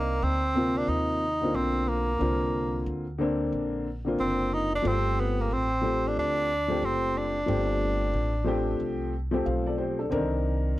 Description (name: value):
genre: hip hop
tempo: 91 BPM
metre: 4/4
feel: swing 64% on 16ths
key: C dorian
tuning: A4 = 440 Hz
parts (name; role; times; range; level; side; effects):
- mellow tenor saxophone; melody; 0.0-9.1 s; Bb3 to Eb4; -28 LUFS; right 1 dB; slapback echo
- dark upright piano; accompaniment; 0.0-10.8 s; C3 to F5; -29 LUFS; left 1 dB; none
- upright bass; bass; 0.0-10.8 s; F#1 to Eb2; -31 LUFS; equal; none
room: light reverb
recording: none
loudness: -25 LUFS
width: side -16 dB against mid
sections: 0.0-10.8 A section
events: none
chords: 0.0 Cm9; 4.8 G9sus4; 10.1 Cm9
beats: 0.23 0.89 1.55 | 2.21 2.87 3.52 4.18 | 4.84 5.50 6.16 6.82 | 7.48 8.14 8.80 9.46 | 10.12 10.78